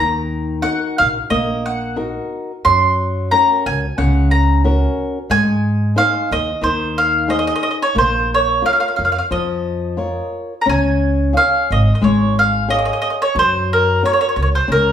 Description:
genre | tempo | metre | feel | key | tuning
italian folk, Italian serenade | 90 BPM | 4/4 | straight | Db major | A4 = 441 Hz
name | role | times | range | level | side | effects
mandolin | melody | 0.0-14.9 s | Bb4 to C6 | -16 LUFS | right 1 dB | none
flamenco guitar | accompaniment | 0.0-14.9 s | Db3 to F5 | -21 LUFS | left 2 dB | none
upright bass | bass | 0.0-14.9 s | Ab1 to Ab2 | -19 LUFS | equal | none
room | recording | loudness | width
wet large studio reverb, RT60 0.8 s | band playing live in one room | -14 LUFS | side -9 dB against mid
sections
0.0-14.9 A section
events
none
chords
0.0 Ebm; 2.6 Gb; 5.3 Ab; 8.0 Bbm; 10.7 Db; 13.4 Gb

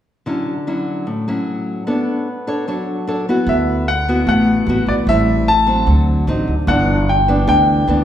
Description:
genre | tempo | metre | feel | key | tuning
bossa nova | 150 BPM | 4/4 | straight | D major | A4 = 440 Hz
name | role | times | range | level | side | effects
nylon-string guitar | accompaniment | 0.3-8.0 s | G2 to C#5 | -17 LUFS | left 1 dB | none
clear grand piano | melody | 3.5-8.0 s | D5 to A5 | -17 LUFS | left 1 dB | none
upright bass | bass | 3.5-8.0 s | G1 to D2 | -18 LUFS | right 1 dB | none
room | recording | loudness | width
wet recital hall reverb, RT60 1.6 s | recorded in a church or concert hall | -14 LUFS | side -10 dB against mid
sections
0.3-3.5 A section; 3.5-8.0 B section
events
none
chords
0.3 Dmaj9; 1.9 Bm9; 3.5 D69; 5.1 Am7; 5.9 D7b9; 6.7 G6

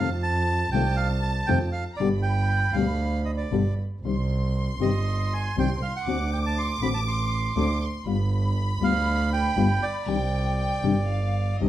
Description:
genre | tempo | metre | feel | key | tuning
tango | 119 BPM | 4/4 | rubato | C minor | A4 = 442 Hz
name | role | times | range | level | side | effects
bandoneon | melody | 0.0-11.6 s | D5 to C6 | -29 LUFS | right 4 dB | slapback echo, plate reverb
clear studio violin section | second line | 0.0-11.7 s | Eb5 to D6 | -34 LUFS | left 2 dB | none
nylon-string guitar | accompaniment | 0.0-11.7 s | B2 to G4 | -26 LUFS | left 6 dB | none
rich double bass | bass | 0.0-11.7 s | G1 to F2 | -25 LUFS | right 2 dB | none
room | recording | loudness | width
moderate large studio reverb, RT60 0.8 s | dark, warm production | -22 LUFS | side -12 dB against mid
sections
0.0-11.7 A section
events
none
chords
0.0 F; 2.0 G; 4.0 Cm; 6.1 D7; 8.1 G7; 10.1 Cmadd9

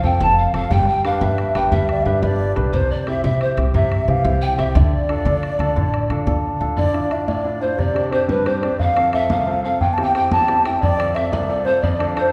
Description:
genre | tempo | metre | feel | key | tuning
celtic folk, Celtic slide | 119 BPM (dotted quarters) | 12/8 | straight | D dorian | A4 = 439 Hz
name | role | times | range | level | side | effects
mellow hollow baroque flute | melody | 0.0-12.3 s | B4 to A5 | -23 LUFS | equal | none
mellow polished pan flute | second line | 0.0-12.3 s | B4 to A5 | -28 LUFS | equal | none
clear grand piano | accompaniment | 0.0-12.3 s | C2 to B4 | -26 LUFS | equal | none
upright bass | bass | 0.0-6.7 s | F1 to D3 | -23 LUFS | equal | none
bodhran | percussion | 0.2-12.2 s | none | -27 LUFS | equal | none
room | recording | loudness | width
wet scoring stage reverb, RT60 1.9 s | recorded in a church or concert hall | -19 LUFS | mono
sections
0.0-6.8 A section; 6.8-12.3 B section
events
none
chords
0.0 F; 0.7 G; 2.7 C; 4.8 Dm; 6.8 Dmadd9; 7.8 Csus2; 8.8 F; 9.8 C/E; 10.8 F

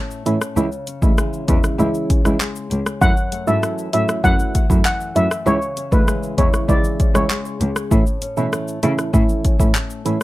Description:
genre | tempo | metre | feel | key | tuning
dancehall | 98 BPM | 4/4 | straight | unclear | A4 = 438 Hz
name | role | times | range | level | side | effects
nylon-string guitar | arpeggios | 0.0-10.2 s | F#2 to E4 | -28 LUFS | left 4 dB | none
deep house drum kit | drums | 0.1-10.2 s | handclaps, hi-hat, kick drum, rim click, shaker | -18 LUFS | equal | none
percussive organ stab | accompaniment | 0.3-10.2 s | E3 to A4 | -22 LUFS | right 3 dB | chorus
warm cello | bass | 0.3-10.1 s | C#2 to C#3 | -21 LUFS | equal | none
steel pan | melody | 3.0-7.3 s | B4 to F#5 | -21 LUFS | left 1 dB | ping-pong delay
room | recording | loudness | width
little or no reverb | none | -16 LUFS | side -17 dB against mid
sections
0.0-10.2 A section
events
none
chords
0.0 A; 0.6 C#m; 3.0 F#m7; 5.5 C#m; 7.9 A

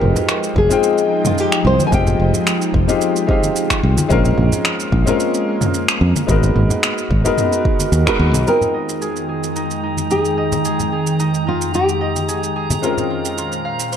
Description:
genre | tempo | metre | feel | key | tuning
sunset chillout | 110 BPM | 4/4 | swing 54% on 16ths | F minor | A4 = 443 Hz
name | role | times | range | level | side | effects
nylon-string guitar | melody | 0.0-3.5, 8.5-12.5 s | F4 to Ab5 | -20 LUFS | left 1 dB | ping-pong delay
clear baby grand piano | accompaniment | 0.0-14.0 s | Ab3 to G5 | -20 LUFS | moving between left 5 dB and right 3 dB | auto-pan, vintage 12-bit sampler grit, low-pass filter, digital delay
ethereal airy pad | sustained chords | 0.0-14.0 s | F2 to G5 | -23 LUFS | equal | ensemble chorus, built-in reverb, vintage 12-bit sampler grit
modern bright fingered electric bass | bass | 0.0-8.4 s | F1 to F2 | -15 LUFS | equal | none
deep house drum kit | drums | 0.0-14.0 s | finger snaps, shaker, toms | -22 LUFS | right 1 dB | overdrive
congas | percussion | 0.2-13.1 s | none | -25 LUFS | left 2 dB | none
electronic kick drum | drums | 0.6-8.2 s | none | -19 LUFS | equal | overdrive
concert harp | arpeggios | 8.5-14.0 s | Eb4 to F5 | -26 LUFS | right 2 dB | low-pass filter, digital delay
drifting glass-harmonics texture | texture | 9.3-14.0 s | Bb5 | -29 LUFS | right 2 dB | chorus, built-in reverb
room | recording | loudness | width
moderate lush hall reverb, RT60 1.6 s, small room ambience | dark, warm production | -14 LUFS | side -8 dB against mid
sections
0.0-8.5 A section; 8.5-14.0 B section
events
band accent 8.1; filter sweep on harp 8.5-14.0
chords
0.0 Fm9; 4.1 Bbm9; 6.3 Abm9; 8.5 Fm9; 12.8 Bbm9

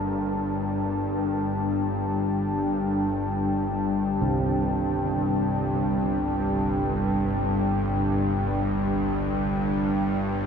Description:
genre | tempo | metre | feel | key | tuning
dark ambient drone | free time | none | none | G minor | A4 = 440 Hz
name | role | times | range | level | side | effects
dark analog pad | sustained chords | 0.0-10.5 s | G3 to A5 | -26 LUFS | left 1 dB | chorus
carillon bells | arpeggios | 0.0-10.3 s | C3 to Bb4 | -33 LUFS | right 3 dB | diffuse ambient delay
bowed-like drone | drone | 0.0-10.5 s | G1 to G2 | -27 LUFS | equal | built-in reverb
room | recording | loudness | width
moderate huge ambient reverb, RT60 9.3 s | none | -23 LUFS | side -6 dB against mid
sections
0.0-10.5 A section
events
none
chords
0.0 G5

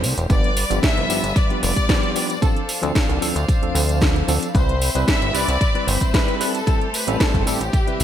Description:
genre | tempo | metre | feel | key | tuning
nu-disco, nu disco | 113 BPM | 4/4 | straight | G mixolydian | A4 = 439 Hz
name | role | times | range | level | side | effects
tine electric piano | accompaniment | 0.0-8.0 s | F3 to B4 | -26 LUFS | equal | overdrive, fast stereo tremolo, digital delay
warm studio string section | sustained chords | 0.0-8.0 s | G3 to B5 | -29 LUFS | left 1 dB | sidechain pumping
chorused synth bass | bass | 0.0-8.0 s | E1 to D2 | -22 LUFS | equal | tube saturation, sidechain pumping
house drum kit | drums | 0.0-8.0 s | hi-hat, snare drum | -24 LUFS | right 1 dB | gated reverb
tambourine | percussion | 0.0-8.0 s | none | -34 LUFS | equal | none
warm symphonic violin section | melody | 0.3-8.0 s | G4 to E5 | -25 LUFS | left 1 dB | ping-pong delay
electronic kick drum | drums | 0.3-7.8 s | none | -19 LUFS | equal | none
room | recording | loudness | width
light reverb | bright 1980s-style digital production | -17 LUFS | side -10 dB against mid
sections
0.0-8.0 A section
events
none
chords
0.3 G7; 2.4 Dm7; 4.5 Cmaj7; 6.7 Am7

